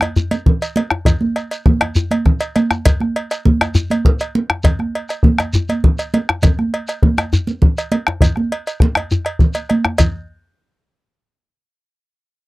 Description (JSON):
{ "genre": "west african traditional, West African drum ensemble", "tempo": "134 BPM (dotted quarters)", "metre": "12/8", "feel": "straight", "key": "none", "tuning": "none", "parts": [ { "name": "bombo", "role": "percussion", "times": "0.0-10.1 s", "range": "none", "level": "-14 LUFS", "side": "left 1 dB", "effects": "none" }, { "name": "cowbell", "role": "percussion", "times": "0.0-10.1 s", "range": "none", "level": "-22 LUFS", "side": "right 1 dB", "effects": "none" }, { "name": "djembe", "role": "percussion", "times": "0.0-10.1 s", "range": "none", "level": "-21 LUFS", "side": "left 2 dB", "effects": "none" }, { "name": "shekere", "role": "percussion", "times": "0.0-10.1 s", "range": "none", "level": "-22 LUFS", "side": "equal", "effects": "none" }, { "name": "congas", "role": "percussion", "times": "0.2-10.1 s", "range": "none", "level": "-18 LUFS", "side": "right 3 dB", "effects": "none" } ], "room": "light reverb", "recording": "dry, gritty hardware recording", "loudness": "-14 LUFS", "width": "side -19 dB against mid", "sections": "0.0-10.0 A section; 10.0-11.8 B section", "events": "none", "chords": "none" }